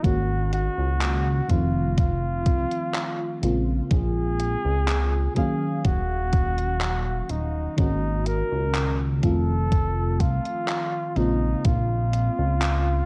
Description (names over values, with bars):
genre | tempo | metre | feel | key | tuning
vaporwave | 62 BPM | 4/4 | straight | Eb dorian | A4 = 437 Hz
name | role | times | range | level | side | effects
breathy flugelhorn | melody | 0.0-13.1 s | Eb4 to Bb4 | -32 LUFS | equal | tape echo
FM electric piano with soft pad layer | accompaniment | 0.0-13.1 s | Db3 to F5 | -31 LUFS | equal | subtle chorus, vintage 12-bit sampler grit
chorused synth bass | bass | 0.0-13.0 s | Eb1 to Db2 | -27 LUFS | equal | none
electronic kick drum | drums | 0.0-11.9 s | none | -25 LUFS | equal | overdrive
gated 80s digital drum machine | drums | 0.0-12.8 s | handclaps, hi-hat | -34 LUFS | equal | gated reverb, overdrive
room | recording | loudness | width
light reverb, digital ambience | worn, warbling old tape, cassette tape, warbly pitch drift | -24 LUFS | mono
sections
0.0-13.1 A section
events
none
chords
0.0 Ab7sus4; 1.5 F7; 3.4 Bbm7; 5.4 Ebm7; 7.8 Ab7sus4; 9.2 F7; 11.2 Bbm7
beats
| 0.04 1.01 1.98 2.95 | 3.92 4.88 5.85 6.82 | 7.79 8.75 9.72 10.69 | 11.66 12.62